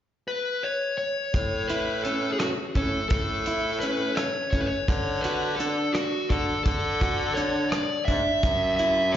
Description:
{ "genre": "progressive instrumental, band music in an uneven meter", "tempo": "169 BPM (eighths)", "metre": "5/8", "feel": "straight", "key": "A major", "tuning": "A4 = 441 Hz", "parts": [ { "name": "dark smooth lead guitar", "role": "melody", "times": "0.3-9.2 s", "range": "F#4 to E5", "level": "-26 LUFS", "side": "left 1 dB", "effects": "overdrive, slapback echo, digital delay" }, { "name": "growling baritone saxophone", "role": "bass", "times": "1.3-9.2 s", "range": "F#2 to D3", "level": "-30 LUFS", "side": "equal", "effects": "none" }, { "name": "warm soul drum kit", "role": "drums", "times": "1.3-9.2 s", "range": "hi-hat, kick drum, rim click, snare drum", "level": "-28 LUFS", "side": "equal", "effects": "none" }, { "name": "clean electric guitar", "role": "arpeggios", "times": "1.7-9.0 s", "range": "C#4 to F#4", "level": "-30 LUFS", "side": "equal", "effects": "slapback echo" } ], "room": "light reverb, small room ambience", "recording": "live gig heard through the venue's PA, recital hall reverb, nothing above 7.5 kHz", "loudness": "-23 LUFS", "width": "side -10 dB against mid", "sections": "0.0-1.3 A section; 1.3-9.2 B section", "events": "none", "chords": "0.0 N.C.; 1.3 A; 4.9 D; 8.4 F#5" }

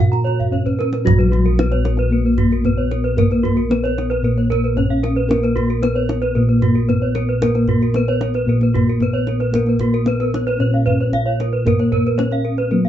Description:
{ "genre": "Balinese gamelan", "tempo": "113 BPM", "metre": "4/4", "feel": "straight", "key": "Bb pelog", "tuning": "A4 = 440 Hz", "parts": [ { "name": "gamelan-type bronze metallophone", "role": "melody", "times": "0.0-12.9 s", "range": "Gb3-20c to Gb4-20c", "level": "-20 LUFS", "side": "left 1 dB", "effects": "none" }, { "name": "gamelan-type bronze metallophone", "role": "arpeggios", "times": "0.0-12.9 s", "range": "Gb4-20c to Gb5-20c", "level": "-26 LUFS", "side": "left 3 dB", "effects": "none" }, { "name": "gamelan-type bossed gongs", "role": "bass", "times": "0.0-12.9 s", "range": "Bb1 to Bb4", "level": "-18 LUFS", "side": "equal", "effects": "none" }, { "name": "gamelan-type bronze metallophone", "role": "arpeggios", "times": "0.1-12.7 s", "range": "Gb4-20c to Bb5", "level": "-24 LUFS", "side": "right 4 dB", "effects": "none" }, { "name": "kendang", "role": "percussion", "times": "0.1-12.6 s", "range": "none", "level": "-22 LUFS", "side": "right 2 dB", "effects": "none" } ], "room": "wet small room ambience, RT60 0.5 s", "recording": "band playing live in one room, nothing above 7.8 kHz", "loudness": "-15 LUFS", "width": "side -11 dB against mid", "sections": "0.0-1.1 A section; 1.1-12.9 B section", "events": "drum fill 0.4-1.1", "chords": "none" }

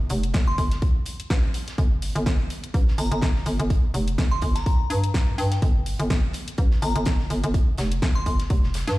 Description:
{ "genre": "bass house", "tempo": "125 BPM", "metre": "4/4", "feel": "swing 56% on 16ths", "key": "G minor", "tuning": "A4 = 440 Hz", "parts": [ { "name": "hollow knocking FM bass", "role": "bass", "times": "0.0-9.0 s", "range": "F1 to G2", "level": "-24 LUFS", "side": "equal", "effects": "overdrive, sidechain pumping" }, { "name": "house drum kit", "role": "drums", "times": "0.1-9.0 s", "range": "hi-hat, snare drum", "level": "-33 LUFS", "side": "equal", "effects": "studio reverb" }, { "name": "loose indie drum kit", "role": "drums", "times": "0.1-9.0 s", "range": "hi-hat, snare drum", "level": "-40 LUFS", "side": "right 1 dB", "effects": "high-pass filter on hats, studio reverb, high-pass filter on snare, high-pass filter on room" }, { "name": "electronic kick drum", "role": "drums", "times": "0.3-8.6 s", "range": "none", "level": "-22 LUFS", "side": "equal", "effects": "studio reverb" }, { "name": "glassy synth bell", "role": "melody", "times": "0.5-8.3 s", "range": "G5 to C6", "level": "-33 LUFS", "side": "left 1 dB", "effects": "chorus, phaser, tape echo" } ], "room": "little or no reverb", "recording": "played on a big sound system in a bare room, large studio reverb, faint mains hum", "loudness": "-20 LUFS", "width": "side -18 dB against mid", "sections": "0.0-9.0 A section", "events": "none", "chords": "none" }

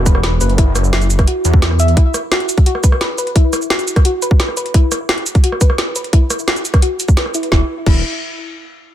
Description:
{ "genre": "dark technical drum and bass", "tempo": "173 BPM", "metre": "4/4", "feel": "straight", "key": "unclear", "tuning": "A4 = 440 Hz", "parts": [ { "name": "wide detuned saw bass", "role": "bass", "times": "0.0-2.0, 7.5-8.0 s", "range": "E1 to E2", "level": "-14 LUFS", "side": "equal", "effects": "chorus, overdrive" }, { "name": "soft round pluck", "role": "arpeggios", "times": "0.1-8.0 s", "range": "E4 to E5", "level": "-21 LUFS", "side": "left 2 dB", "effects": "wide subtle chorus, cassette tape, sidechain pumping, digital delay" }, { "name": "drum and bass drum kit", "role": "drums", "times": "0.1-7.9 s", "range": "crash cymbal, hi-hat, rim click, shaker, snare drum", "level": "-19 LUFS", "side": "right 1 dB", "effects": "none" }, { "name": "electronic kick drum", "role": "drums", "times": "0.1-7.9 s", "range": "none", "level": "-11 LUFS", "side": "equal", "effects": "overdrive" } ], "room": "little or no reverb", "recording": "dense, heavily limited modern master", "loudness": "-12 LUFS", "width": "side -12 dB against mid", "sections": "0.0-7.5 A section; 7.5-8.9 B section", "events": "filter sweep on synth pluck 0.0-7.5", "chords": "0.0 E5; 7.5 N.C." }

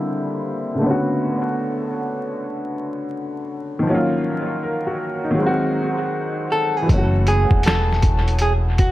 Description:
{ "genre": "lo-fi hip hop", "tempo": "79 BPM", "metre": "4/4", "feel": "swing 64% on 16ths", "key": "unclear", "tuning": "A4 = 440 Hz", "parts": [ { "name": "warm upright piano", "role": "accompaniment", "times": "0.0-8.9 s", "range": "C#3 to A#4", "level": "-21 LUFS", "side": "equal", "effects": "cassette tape, low-pass filter, dub echo" }, { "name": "hollow-body jazz guitar", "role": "melody", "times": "6.5-8.9 s", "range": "F#4 to A4", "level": "-22 LUFS", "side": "equal", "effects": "low-pass filter, dub echo" }, { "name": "deep dub fingered electric bass", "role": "bass", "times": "6.9-8.9 s", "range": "E1 to F#1", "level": "-19 LUFS", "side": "equal", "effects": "none" }, { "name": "lo-fi sampler-style drum kit", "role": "drums", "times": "6.9-8.9 s", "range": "hi-hat, kick drum, snare drum", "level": "-18 LUFS", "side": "equal", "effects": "none" } ], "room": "light reverb, digital ambience", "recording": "echo-heavy mix, vinyl crackle", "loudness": "-18 LUFS", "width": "side -16 dB against mid", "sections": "0.0-6.9 A section; 6.9-8.9 B section", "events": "filter sweep on upright piano 0.0-6.9", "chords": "0.0 C9; 0.8 Bm7; 3.9 D#m7; 5.4 G#7; 6.9 F#m7" }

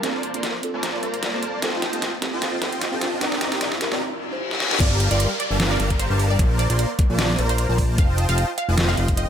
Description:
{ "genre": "future bass", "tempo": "151 BPM", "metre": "4/4", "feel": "swing 55% on 16ths, half-time", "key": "Bb major", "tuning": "A4 = 440 Hz", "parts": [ { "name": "glassy digital keys", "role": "accompaniment", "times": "0.0-4.8 s", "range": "C4 to C5", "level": "-30 LUFS", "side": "right 3 dB", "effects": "chorus, sidechain pumping, digital delay" }, { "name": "supersaw chords", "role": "riff", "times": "0.0-9.3 s", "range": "G3 to C6", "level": "-26 LUFS", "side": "equal", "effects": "ensemble chorus, sidechain pumping, low-pass filter" }, { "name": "dubstep drum kit", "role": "drums", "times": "0.0-9.3 s", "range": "crash cymbal, hi-hat, snare drum", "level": "-25 LUFS", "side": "equal", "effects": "high-pass filter on hats, high-pass filter on toms, high-pass filter on snare, high-pass filter on cymbals, high-pass filter on room" }, { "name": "riser, reverse cymbal and downlifter", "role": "sound effects", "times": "1.2-8.0 s", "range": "none", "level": "-30 LUFS", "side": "left 2 dB", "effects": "none" }, { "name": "wide unison pluck", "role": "melody", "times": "4.8-9.3 s", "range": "C5 to F5", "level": "-28 LUFS", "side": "right 1 dB", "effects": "analog chorus, sidechain pumping, digital delay" }, { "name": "fat analog bass", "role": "bass", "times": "4.8-9.3 s", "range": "F1 to Bb1", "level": "-21 LUFS", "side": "equal", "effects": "sidechain pumping" }, { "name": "electronic kick drum", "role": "drums", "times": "4.8-9.2 s", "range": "none", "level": "-20 LUFS", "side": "equal", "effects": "none" } ], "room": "light reverb", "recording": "none", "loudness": "-19 LUFS", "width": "side -9 dB against mid", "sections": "0.0-4.8 A section; 4.8-9.3 B section", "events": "build-up 0.0-4.8; drum fill 0.0-4.0, 4.5; riser 1.2-4.0; reverse cymbal 4.0-4.8; drop 4.8-9.3", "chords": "0.0 Bbmaj7; 1.6 F7; 3.2 Cm7; 4.8 Gm7; 6.4 Bbmaj7; 8.0 F7" }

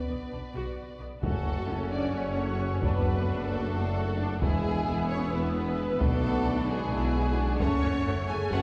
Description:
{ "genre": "cinematic, epic orchestral film score", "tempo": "264 BPM (eighths)", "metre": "7/8", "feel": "straight", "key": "F# minor", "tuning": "A4 = 444 Hz", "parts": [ { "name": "warm symphonic violin section", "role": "melody", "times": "0.0-8.6 s", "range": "G#4 to G#5", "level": "-38 LUFS", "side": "equal", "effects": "none" }, { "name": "warm symphonic violin section", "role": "second line", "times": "0.0-8.6 s", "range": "A3 to B4", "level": "-41 LUFS", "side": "equal", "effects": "none" }, { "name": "mellow French horn section", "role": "sustained chords", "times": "0.0-8.6 s", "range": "G#3 to G#4", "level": "-39 LUFS", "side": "equal", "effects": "none" }, { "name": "rich symphonic viola section", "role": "accompaniment", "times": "0.1-8.6 s", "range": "A3 to F#4", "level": "-40 LUFS", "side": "equal", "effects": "none" }, { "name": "rich symphonic double bass section", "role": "bass", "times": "0.1-8.6 s", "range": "E1 to B1", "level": "-37 LUFS", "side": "equal", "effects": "none" }, { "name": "warm symphonic cello section", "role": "bass", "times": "0.1-8.6 s", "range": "E2 to B2", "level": "-37 LUFS", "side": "equal", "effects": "none" }, { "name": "clear trombone section", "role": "sustained chords", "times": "1.2-7.8 s", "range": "C#3 to D4", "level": "-41 LUFS", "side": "equal", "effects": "none" }, { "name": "warm woodwind section", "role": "sustained chords", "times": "1.2-8.6 s", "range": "B3 to F#5", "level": "-41 LUFS", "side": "equal", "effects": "none" }, { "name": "mellow tuba", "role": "bass", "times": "1.2-8.6 s", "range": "E1 to B1", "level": "-38 LUFS", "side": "equal", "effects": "none" }, { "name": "taiko ensemble", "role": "drums", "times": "1.2-8.0 s", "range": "none", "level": "-34 LUFS", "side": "equal", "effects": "none" } ], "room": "wet scoring stage reverb, RT60 1.7 s", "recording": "heard from further back in the room", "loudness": "-29 LUFS", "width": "mono", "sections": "0.0-1.2 A section; 1.2-8.6 A section", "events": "none", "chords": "0.0 Bm; 1.2 F#m; 2.8 D/F#; 4.4 E; 6.0 Bm; 7.6 F#m" }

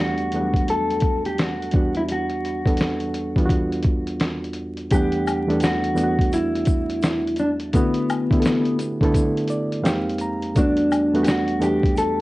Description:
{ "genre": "lo-fi hip hop", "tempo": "85 BPM", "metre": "4/4", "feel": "swing 61% on 16ths", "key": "E minor", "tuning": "A4 = 440 Hz", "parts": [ { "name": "mellow electric guitar", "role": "melody", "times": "0.0-12.2 s", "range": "B3 to A4", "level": "-23 LUFS", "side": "left 1 dB", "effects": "spring reverb, cassette tape, tape echo" }, { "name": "barky reed electric piano", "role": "accompaniment", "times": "0.0-12.2 s", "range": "E2 to Bb5", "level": "-23 LUFS", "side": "right 1 dB", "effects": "cassette tape" }, { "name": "lo-fi sampler-style drum kit", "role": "drums", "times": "0.2-12.2 s", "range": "hi-hat, kick drum, snare drum", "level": "-22 LUFS", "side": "equal", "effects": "none" }, { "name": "egg shaker and woodblock", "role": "percussion", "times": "4.9-12.2 s", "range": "none", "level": "-32 LUFS", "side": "left 4 dB", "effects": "none" } ], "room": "moderate studio reverb, RT60 0.6 s", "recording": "home recording on cassette, vinyl crackle, nothing above 10.9 kHz", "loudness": "-19 LUFS", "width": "side -19 dB against mid", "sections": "0.0-4.9 A section; 4.9-12.2 A section", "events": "none", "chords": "0.0 Em11; 1.7 Em9; 4.9 Em11; 7.7 D6; 9.9 Fm11; 10.6 Em11" }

